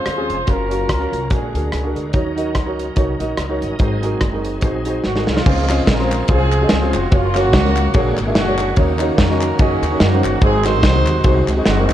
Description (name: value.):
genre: uptempo gospel.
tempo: 145 BPM.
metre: 4/4.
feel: swing 56% on 8ths.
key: Db major.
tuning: A4 = 443 Hz.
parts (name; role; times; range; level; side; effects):
warm horn section; melody; 0.0-2.1, 5.1-11.9 s; Ab3 to C5; -22 LUFS; right 1 dB; none.
warm concert grand piano; accompaniment; 0.0-11.9 s; Ab2 to Fb5; -22 LUFS; equal; none.
bright tonewheel organ; sustained chords; 0.0-11.9 s; Db3 to Eb5; -26 LUFS; right 2 dB; fast rotary speaker, overdrive, chorus vibrato.
upright bass; bass; 0.1-11.9 s; F1 to Gb2; -20 LUFS; equal; none.
modern studio drum kit; drums; 0.1-11.9 s; crash cymbal, hi-hat, kick drum, ride cymbal, rim click, snare drum; -18 LUFS; equal; none.
group handclap; percussion; 5.7-11.9 s; none; -30 LUFS; left 2 dB; none.
room: light reverb.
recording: worn, warbling old tape, cassette tape, warbly pitch drift.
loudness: -14 LUFS.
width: side -12 dB against mid.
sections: 0.0-5.5 A section; 5.5-11.9 B section.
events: drum fill 5.0-5.5.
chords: 0.5 Gbmaj7; 1.3 Bb7alt; 2.1 Ebm7; 3.8 Ab7; 5.5 Dbmaj7; 7.1 Gbmaj7; 7.9 Bb7alt; 8.8 Ebm7; 10.4 Ab7.